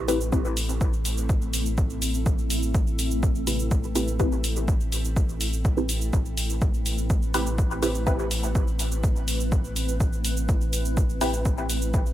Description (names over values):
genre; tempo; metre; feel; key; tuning
dub techno; 124 BPM; 4/4; straight; A minor; A4 = 442 Hz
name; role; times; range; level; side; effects
granular cloud pad; sustained chords; 0.0-12.1 s; A3 to B4; -33 LUFS; equal; built-in reverb, sidechain pumping
soft dub sub bass; bass; 0.0-12.1 s; A1; -28 LUFS; equal; sidechain pumping
filtered dub chord stab; stabs; 0.1-0.4, 3.5-8.2, 11.2-11.4 s; C4 to B4; -29 LUFS; equal; phaser, sidechain pumping, dub echo
electronic hi-hat and cabasa; drums; 0.1-12.1 s; none; -31 LUFS; right 1 dB; none
electronic kick drum; drums; 0.3-12.0 s; none; -24 LUFS; equal; none
room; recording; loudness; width
digital ambience; none; -22 LUFS; side -13 dB against mid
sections
0.0-12.1 A section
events
none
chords
0.0 Am7